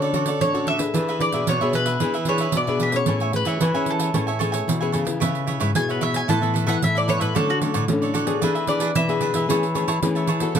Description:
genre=samba and choro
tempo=112 BPM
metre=4/4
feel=straight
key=A major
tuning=A4 = 438 Hz
part: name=bowl-back mandolin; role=melody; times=0.0-9.5 s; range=F#4 to A5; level=-25 LUFS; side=right 1 dB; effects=plate reverb
part: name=cavaquinho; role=accompaniment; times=0.0-10.6 s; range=D4 to A5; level=-27 LUFS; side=right 5 dB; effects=none
part: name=nylon-string guitar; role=accompaniment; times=0.0-10.6 s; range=G#2 to B4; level=-26 LUFS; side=left 6 dB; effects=none
part: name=nylon-string guitar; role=bass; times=0.0-10.6 s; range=G#2 to E3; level=-25 LUFS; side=left 1 dB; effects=none
part: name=pandeiro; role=percussion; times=0.0-10.6 s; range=none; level=-26 LUFS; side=right 4 dB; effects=none
room=moderate booth ambience, RT60 0.2 s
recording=none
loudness=-19 LUFS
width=side -8 dB against mid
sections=0.0-5.2 A section; 5.2-10.6 B section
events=mandolin solo 5.2-10.6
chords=0.0 Dmaj7; 0.9 E7; 3.1 Amaj9; 5.2 C#m7; 6.3 Asus2; 7.4 Dmaj7; 8.4 E7; 9.5 Amaj7/E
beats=0.41 | 0.94 1.48 2.01 2.54 | 3.08 3.61 4.15 4.68 | 5.22 5.75 6.29 6.82 | 7.35 7.89 8.42 8.95 | 9.49 10.02 10.55

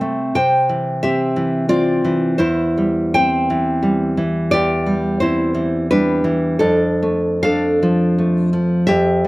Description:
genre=romantic piece for solo classical guitar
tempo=68-90 BPM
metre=3/4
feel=rubato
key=unclear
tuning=A4 = 441 Hz
part: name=nylon-string guitar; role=solo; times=0.0-9.3 s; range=E2 to G5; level=-15 LUFS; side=equal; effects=none
room=little or no reverb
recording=recorded outdoors, with no room sound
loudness=-15 LUFS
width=side -20 dB against mid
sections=0.0-9.3 A section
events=none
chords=0.4 C; 2.4 C/E; 6.6 Dm/F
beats=| 0.35 1.03 1.71 | 2.40 3.16 3.85 | 4.53 5.22 5.89 | 6.59 7.42 8.16 | 8.89

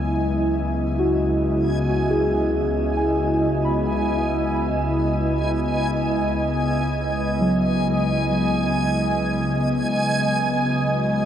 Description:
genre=ambient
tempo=67 BPM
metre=4/4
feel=straight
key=C# minor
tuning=A4 = 439 Hz
part: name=airy breathy pad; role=sustained chords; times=0.0-11.3 s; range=C#3 to D#5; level=-22 LUFS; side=equal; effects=chorus
part: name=muted felt-like synth keys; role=arpeggios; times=0.0-11.3 s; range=F#3 to B5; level=-26 LUFS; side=equal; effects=chorus, tape echo
part: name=bright studio double bass section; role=bass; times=0.0-11.3 s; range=C#2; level=-28 LUFS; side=equal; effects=none
part: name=backwards swelling texture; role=texture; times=0.0-11.3 s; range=G#5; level=-28 LUFS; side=right 1 dB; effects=built-in reverb
room=wet shimmer reverb, RT60 7.6 s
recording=dark, warm production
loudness=-19 LUFS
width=side -9 dB against mid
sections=0.0-11.3 A section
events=fade-out on synth keys 0.0-11.3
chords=0.0 C#m7; 9.9 G#m7/C#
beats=0.04 0.94 1.83 | 2.73 3.62 4.52 5.42 | 6.31 7.21 8.10 9.00 | 9.89 10.79

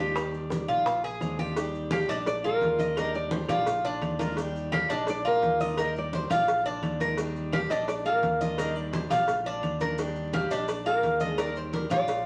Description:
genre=latin, Cuban son and guajira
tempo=171 BPM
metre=4/4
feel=straight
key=Eb major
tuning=A4 = 441 Hz
part: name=picked steel-string acoustic guitar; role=accompaniment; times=0.0-12.1 s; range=Eb3 to G4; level=-39 LUFS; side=equal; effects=none
part: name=Cuban tres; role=arpeggios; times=0.0-12.2 s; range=D4 to Eb5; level=-30 LUFS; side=equal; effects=none
part: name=fingered electric bass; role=bass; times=0.0-12.3 s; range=Bb1 to Eb2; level=-38 LUFS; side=equal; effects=none
part: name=bongos and cowbell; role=percussion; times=0.2-12.3 s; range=none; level=-39 LUFS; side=equal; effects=none
part: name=claves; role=percussion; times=0.2-12.1 s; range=none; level=-49 LUFS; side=equal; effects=none
part: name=congas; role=percussion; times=0.2-12.3 s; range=none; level=-37 LUFS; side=equal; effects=none
part: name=maracas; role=percussion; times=0.2-12.3 s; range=none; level=-55 LUFS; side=equal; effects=none
part: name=nylon-string guitar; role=melody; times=1.9-12.3 s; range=Bb4 to F5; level=-33 LUFS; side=equal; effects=none
room=wet studio reverb, RT60 0.8 s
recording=vinyl crackle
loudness=-28 LUFS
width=mono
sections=0.0-1.6 A section; 1.6-12.3 B section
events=none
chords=0.2 Ebmaj7; 0.9 Bb7; 1.6 Ebmaj7; 2.3 Bb7; 3.0 Ebmaj7; 3.7 Bb7; 4.4 Ebmaj7; 5.1 Bb7; 5.8 Ebmaj7; 6.5 Bb7; 7.2 Ebmaj7; 7.9 Bb7; 8.6 Ebmaj7; 9.3 Bb7; 10.0 Ebmaj7; 10.7 Bb7; 11.4 Ebmaj7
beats=| 0.16 0.51 0.86 1.21 | 1.57 1.92 2.27 2.62 | 2.97 3.32 3.67 4.02 | 4.38 4.73 5.08 5.43 | 5.78 6.13 6.48 6.83 | 7.18 7.53 7.88 8.23 | 8.58 8.93 9.28 9.63 | 9.98 10.33 10.68 11.03 | 11.38 11.73 12.08

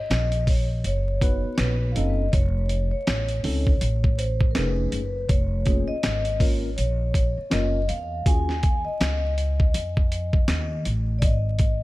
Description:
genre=hip hop, jazz-hop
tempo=81 BPM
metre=4/4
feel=swing 60% on 16ths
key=G# dorian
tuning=A4 = 440 Hz
part: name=vibraphone with soft mallets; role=melody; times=0.0-11.8 s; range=A#4 to G#5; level=-30 LUFS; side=left 2 dB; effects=tape echo
part: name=upright bass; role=bass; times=0.1-11.8 s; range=F1 to E#2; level=-25 LUFS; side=equal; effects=none
part: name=dusty soul sampler-style drum kit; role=drums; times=0.1-11.8 s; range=hi-hat, kick drum, snare drum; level=-23 LUFS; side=equal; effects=none
part: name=tine electric piano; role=accompaniment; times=1.2-8.5 s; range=A3 to B4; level=-31 LUFS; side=equal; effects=medium stereo tremolo
room=little or no reverb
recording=vinyl crackle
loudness=-21 LUFS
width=side -18 dB against mid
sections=0.0-11.8 A section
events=none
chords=0.0 G#m9 (rootless); 2.3 F7b13; 4.6 F7alt; 5.3 A#m7/E#; 8.3 D#7sus2; 11.2 G#5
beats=0.11 0.85 1.59 | 2.33 3.07 3.81 4.55 | 5.29 6.04 6.78 7.52 | 8.26 9.00 9.74 10.48 | 11.22

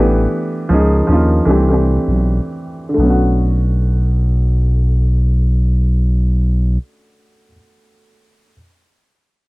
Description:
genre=lo-fi hip hop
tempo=79 BPM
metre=4/4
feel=swing 62% on 16ths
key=unclear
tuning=A4 = 440 Hz
part: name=warm upright piano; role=accompaniment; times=0.0-8.5 s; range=D3 to B4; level=-16 LUFS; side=equal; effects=cassette tape, low-pass filter
part: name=growling FM bass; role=bass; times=0.0-6.8 s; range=A1 to D#2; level=-13 LUFS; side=equal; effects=none
room=light reverb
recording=dark, warm production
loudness=-12 LUFS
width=side -22 dB against mid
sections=0.0-3.0 A section; 3.0-6.0 B section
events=filter sweep on upright piano 0.0-3.0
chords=0.0 A9sus4; 0.7 C#69; 1.5 C69; 3.0 Bm9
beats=0.70 1.47 2.22 | 2.98 3.74 4.50 5.26

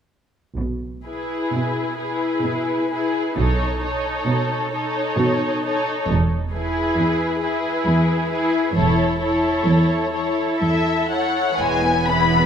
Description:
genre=classical, slow romantic movement for string orchestra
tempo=65 BPM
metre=3/4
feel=uneven beats, rubato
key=E major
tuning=A4 = 439 Hz
part: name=muted studio cello section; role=bass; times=0.6-12.5 s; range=E2 to B2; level=-23 LUFS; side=right 2 dB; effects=none
part: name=muted studio double bass section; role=bass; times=0.6-12.5 s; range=E1 to B1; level=-24 LUFS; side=right 3 dB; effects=none
part: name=muted studio violin section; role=melody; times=1.1-12.5 s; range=B4 to B5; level=-24 LUFS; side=left 2 dB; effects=none
part: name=muted studio violin section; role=second line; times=1.1-12.5 s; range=G#3 to B4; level=-26 LUFS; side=left 2 dB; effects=none
part: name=muted symphonic viola section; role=accompaniment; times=1.1-12.5 s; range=E3 to E4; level=-23 LUFS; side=left 1 dB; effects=none
room=wet scoring stage reverb, RT60 2.0 s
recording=none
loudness=-18 LUFS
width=side -8 dB against mid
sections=0.6-11.6 A section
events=none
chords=0.6 E/B; 3.4 B9; 6.1 E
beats=| 0.57 1.53 2.44 | 3.37 4.27 5.19 | 6.08 6.97 7.87 | 8.77 9.68 10.62 | 11.60

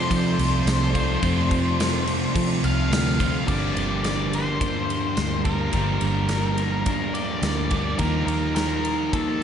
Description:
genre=rock, shoegaze and dream pop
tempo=106 BPM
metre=4/4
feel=straight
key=G minor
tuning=A4 = 439 Hz
part: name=octave-fuzz lead guitar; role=melody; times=0.0-9.4 s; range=A4 to F5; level=-29 LUFS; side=left 2 dB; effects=distortion, ping-pong delay
part: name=sweeping resonant pad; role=sustained chords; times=0.0-3.5 s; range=F4 to A5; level=-37 LUFS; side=right 2 dB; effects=chorus
part: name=twelve-string electric guitar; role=arpeggios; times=0.0-9.4 s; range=F3 to G4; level=-34 LUFS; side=left 5 dB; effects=none
part: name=crunchy overdriven guitar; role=riff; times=0.0-9.4 s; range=F2 to G4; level=-27 LUFS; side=right 6 dB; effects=reverse reverb
part: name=thick fuzz guitar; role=riff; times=0.0-9.4 s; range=F2 to Eb4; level=-28 LUFS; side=left 6 dB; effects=distortion, wide subtle chorus
part: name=vintage muted fingered electric bass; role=bass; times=0.1-9.3 s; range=G1 to F3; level=-26 LUFS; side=equal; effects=none
part: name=big rock drum kit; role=drums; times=0.1-9.3 s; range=crash cymbal, kick drum, ride cymbal, snare drum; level=-28 LUFS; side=equal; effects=none
room=wet plate reverb, RT60 2.4 s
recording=dreamy mix soaked in reverb, nothing above 11.0 kHz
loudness=-20 LUFS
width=side -8 dB against mid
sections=0.0-3.5 A section; 3.5-9.4 B section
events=none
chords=0.0 F; 3.5 Gm7; 8.0 Ebadd9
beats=0.11 0.67 | 1.24 1.80 2.36 2.92 | 3.48 4.05 4.61 5.18 | 5.74 6.31 6.87 7.44 | 8.00 8.57 9.13

